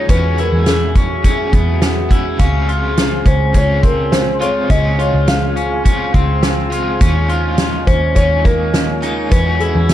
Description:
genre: dream pop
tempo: 104 BPM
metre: 4/4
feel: straight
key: unclear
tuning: A4 = 444 Hz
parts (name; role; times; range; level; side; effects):
- felt-muted upright piano; melody; 0.0-9.9 s; G#4 to F5; -21 LUFS; left 2 dB; tape echo
- overdriven semi-hollow guitar; accompaniment; 0.0-9.9 s; Db3 to F#4; -24 LUFS; right 2 dB; tremolo, lush chorus
- warbly tape-like pad; sustained chords; 0.0-9.9 s; F4 to Ab5; -24 LUFS; equal; chorus, built-in reverb
- electric guitar at the edge of break-up; arpeggios; 0.0-9.9 s; Bb3 to F4; -21 LUFS; left 3 dB; wide subtle chorus, tape echo
- vintage muted picked electric bass; bass; 0.0-9.9 s; Db2 to E2; -18 LUFS; equal; none
- loose indie drum kit; drums; 0.1-9.9 s; hi-hat, kick drum, snare drum; -15 LUFS; equal; none
- synth chime; texture; 2.4-5.3, 9.0-9.6 s; Eb5 to Ab5; -33 LUFS; right 2 dB; none
room: light reverb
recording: dark, warm production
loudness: -12 LUFS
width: side -12 dB against mid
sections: 0.0-9.9 A section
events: none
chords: 0.1 E69; 2.4 Dbmaj7; 7.0 Eb9sus4; 9.3 E69

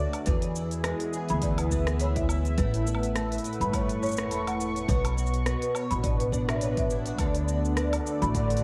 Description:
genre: folktronica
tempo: 104 BPM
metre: 4/4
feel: swing 56% on 16ths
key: B minor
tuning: A4 = 440 Hz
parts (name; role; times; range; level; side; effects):
- warm analog pad; sustained chords; 0.0-8.6 s; A2 to C#6; -34 LUFS; equal; chorus, tremolo
- picked twelve-string acoustic guitar; arpeggios; 0.0-8.6 s; E2 to C#5; -36 LUFS; equal; ensemble chorus, analog delay
- upright bass; bass; 0.0-8.6 s; E1 to E2; -31 LUFS; equal; none
- organic electronic drum kit; drums; 0.1-8.6 s; hi-hat, rim click, shaker, woodblock; -39 LUFS; equal; none
- folk marimba with medium mallets; second line; 0.3-8.5 s; B4 to B5; -37 LUFS; equal; diffuse ambient delay
- electronic kick drum; drums; 0.3-8.5 s; none; -33 LUFS; equal; none
room: light reverb, small room ambience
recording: vinyl crackle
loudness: -27 LUFS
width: mono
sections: 0.0-8.6 A section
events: none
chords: 0.3 E; 2.6 Aadd9; 4.9 Bmadd9

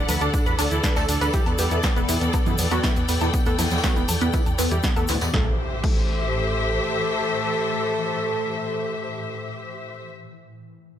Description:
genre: melodic techno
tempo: 120 BPM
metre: 4/4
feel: straight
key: A dorian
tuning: A4 = 438 Hz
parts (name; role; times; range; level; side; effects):
- fat analog lead; melody; 0.0-10.1 s; B3 to A4; -28 LUFS; equal; chorus, digital delay
- dark detuned saw bass; bass; 0.0-6.8 s; E1 to F#2; -26 LUFS; equal; sidechain pumping
- swarming drone; drone; 0.0-9.9 s; A2 to E3; -37 LUFS; equal; none
- warm symphonic string section; texture; 0.0-10.1 s; G4 to G5; -28 LUFS; left 2 dB; sidechain pumping
- tight sequenced synth; arpeggios; 0.1-6.0 s; E3 to B5; -29 LUFS; right 1 dB; chorus, phaser, cassette tape, sidechain pumping, tape echo
- jazz brush drum kit; drums; 0.1-5.3 s; hi-hat, snare drum, tambourine; -34 LUFS; left 2 dB; high-pass filter on hats, high-pass filter on snare, high-pass filter on perc, high-pass filter on room
- punchy analog drum machine; drums; 0.1-6.0 s; congas, crash cymbal, hi-hat, snare drum, woodblock; -29 LUFS; equal; none
- tube shaker; percussion; 0.1-5.3 s; none; -36 LUFS; left 2 dB; none
- electronic kick drum; drums; 0.3-6.0 s; none; -23 LUFS; equal; none
- impact; sound effects; 5.3-10.0 s; none; -32 LUFS; equal; none
room: light reverb, studio reverb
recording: none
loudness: -20 LUFS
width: side -10 dB against mid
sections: 0.0-5.3 A section; 5.3-9.3 B section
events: drop 0.0-5.3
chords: 0.0 D; 1.3 Em; 5.3 Am

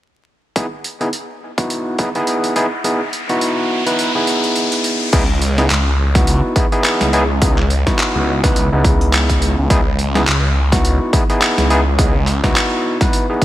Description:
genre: glitch hop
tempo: 105 BPM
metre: 4/4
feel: swing 57% on 16ths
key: C# minor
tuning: A4 = 437 Hz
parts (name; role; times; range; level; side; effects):
- overdriven tine electric piano; stabs; 0.6-13.4 s; B3 to B4; -18 LUFS; equal; sidechain pumping, low-pass filter, digital delay
- boom bap sampler-style drum kit; drums; 0.6-13.4 s; crash cymbal, handclaps, hi-hat, snare drum; -20 LUFS; equal; overdrive, small room ambience, gated reverb
- electronic kick drum; drums; 0.6-13.4 s; none; -16 LUFS; equal; overdrive, high-pass filter on kick, small room ambience, high-pass filter on room
- riser; sound effects; 1.9-5.1 s; none; -23 LUFS; left 2 dB; none
- phased detuned saw bass; bass; 5.1-12.5 s; C#2; -16 LUFS; equal; phaser, tube saturation
room: light reverb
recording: bright 1980s-style digital production, vinyl crackle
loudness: -13 LUFS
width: side -14 dB against mid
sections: 0.6-5.1 A section; 5.1-13.4 B section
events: filter sweep on tine electric piano 0.6-5.1; riser 1.9-5.1; kick drops out 2.8-5.1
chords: 0.6 Badd11; 5.1 C#m7

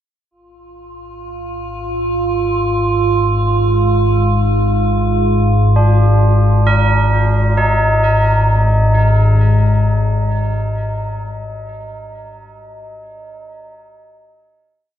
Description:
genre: dark ambient drone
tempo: free time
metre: none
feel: none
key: unclear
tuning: A4 = 440 Hz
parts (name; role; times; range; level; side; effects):
- deep rumbling drone; drone; 1.9-10.9 s; Ab1 to Ab2; -14 LUFS; left 1 dB; built-in reverb
- metallic inharmonic drone; texture; 1.0-7.6 s; F4; -19 LUFS; right 3 dB; chorus, built-in reverb
- tubular bells; arpeggios; 5.8-13.7 s; D4 to A#4; -19 LUFS; right 1 dB; tape echo
room: moderate spring reverb, RT60 2.8 s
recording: echo-heavy mix, nothing above 7.5 kHz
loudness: -12 LUFS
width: side -10 dB against mid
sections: 0.3-7.6 A section; 7.6-11.2 final chord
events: fade-in on synth drone 0.3-7.6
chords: 0.3 Fm/Ab; 4.0 A#7/G#; 7.6 G#5

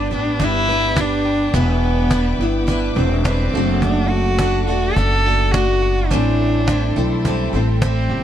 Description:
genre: acoustic pop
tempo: 105 BPM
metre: 4/4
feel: swing 55% on 16ths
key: unclear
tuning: A4 = 441 Hz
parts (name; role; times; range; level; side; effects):
- warm cello; melody; 0.0-8.2 s; B3 to A4; -20 LUFS; equal; none
- picked steel-string acoustic guitar; accompaniment; 0.0-8.2 s; A2 to B4; -23 LUFS; equal; double-tracked left and right
- warm symphonic string section; sustained chords; 0.0-8.2 s; A4 to D6; -32 LUFS; left 4 dB; none
- direct-recorded clean electric guitar; arpeggios; 0.0-8.2 s; E3 to G4; -29 LUFS; right 7 dB; none
- upright bass; bass; 0.0-8.2 s; E1 to B1; -19 LUFS; equal; none
- cajon; drums; 0.4-8.0 s; none; -21 LUFS; equal; none
room: little or no reverb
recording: dry, close 1970s-style studio recording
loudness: -15 LUFS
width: side -10 dB against mid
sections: 0.0-8.2 A section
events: none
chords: 0.0 G; 1.5 Em7; 3.5 D; 6.1 Am7

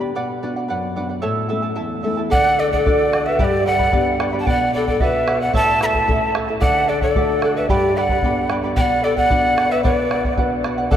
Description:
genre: andean folk, Andean ensemble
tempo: 112 BPM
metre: 2/4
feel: straight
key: B minor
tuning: A4 = 439 Hz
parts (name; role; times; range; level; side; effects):
- charango; accompaniment; 0.0-11.0 s; E4 to B5; -24 LUFS; right 2 dB; none
- nylon-string guitar; accompaniment; 0.0-11.0 s; E2 to G4; -25 LUFS; left 2 dB; none
- breathy mellow quena; melody; 2.3-11.0 s; D5 to B5; -19 LUFS; right 1 dB; none
- breathy reedy pan flute; second line; 2.3-11.0 s; G4 to F#5; -22 LUFS; left 2 dB; slapback echo
- bombo; percussion; 2.3-11.0 s; none; -23 LUFS; equal; none
room: wet cathedral reverb, RT60 5.6 s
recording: in a vast, echoing space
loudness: -16 LUFS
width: side -10 dB against mid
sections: 0.0-2.3 A section; 2.3-10.9 B section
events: none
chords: 0.2 Bm; 1.2 A; 2.3 D; 3.4 G; 4.5 Bm; 5.5 A; 6.6 D; 7.7 G; 8.8 Bm

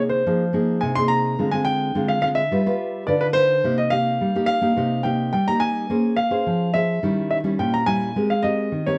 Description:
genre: samba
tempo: 106 BPM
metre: 4/4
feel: straight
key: F minor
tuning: A4 = 439 Hz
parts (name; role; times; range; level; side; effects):
- nylon-string guitar; accompaniment; 0.0-9.0 s; Bb2 to C5; -24 LUFS; equal; none
- warm grand piano; melody; 0.1-9.0 s; B4 to C6; -24 LUFS; equal; plate reverb
room: moderate studio reverb, RT60 0.6 s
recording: none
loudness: -21 LUFS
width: mono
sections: 0.0-9.0 A section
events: none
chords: 0.0 Fm7; 1.4 Dm7b5; 2.5 G7b13; 3.6 Cm7; 5.9 Bbm9; 7.0 Eb7b9; 8.2 Abmaj9

